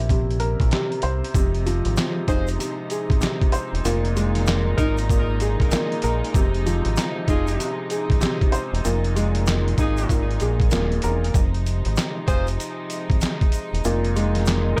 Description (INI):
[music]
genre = hip hop, boom-bap hip-hop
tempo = 96 BPM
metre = 4/4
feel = swing 62% on 16ths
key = F minor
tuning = A4 = 439 Hz
[part]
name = warm upright piano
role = accompaniment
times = 0.0-14.8 s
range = Bb2 to C5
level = -28 LUFS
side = equal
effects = cassette tape, high-pass filter, low-pass filter, plate reverb
[part]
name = deep dub fingered electric bass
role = bass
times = 0.0-14.7 s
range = Eb1 to C2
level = -26 LUFS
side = equal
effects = none
[part]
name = trip hop sampler-style drum kit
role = drums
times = 0.1-14.8 s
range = handclaps, hi-hat, kick drum, snare drum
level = -25 LUFS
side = equal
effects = none
[part]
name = warm studio string section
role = sustained chords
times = 1.3-14.8 s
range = Bb2 to Eb4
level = -34 LUFS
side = equal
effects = high-pass filter, low-pass filter, plate reverb
[part]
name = tube shaker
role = percussion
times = 1.4-14.8 s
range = none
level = -42 LUFS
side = equal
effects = none
[part]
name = clear horn section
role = stabs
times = 2.3-14.8 s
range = Bb3 to C5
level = -33 LUFS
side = equal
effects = high-pass filter, low-pass filter, tape echo, plate reverb
[sound]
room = little or no reverb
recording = none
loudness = -22 LUFS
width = mono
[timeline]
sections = 0.0-1.3 A section; 1.3-14.8 B section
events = none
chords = 0.0 C7; 1.3 Fm7; 3.8 Ebsus4/F; 6.3 Fm7; 8.8 Ebsus4/F; 11.3 Fm7; 13.8 Ebsus4/F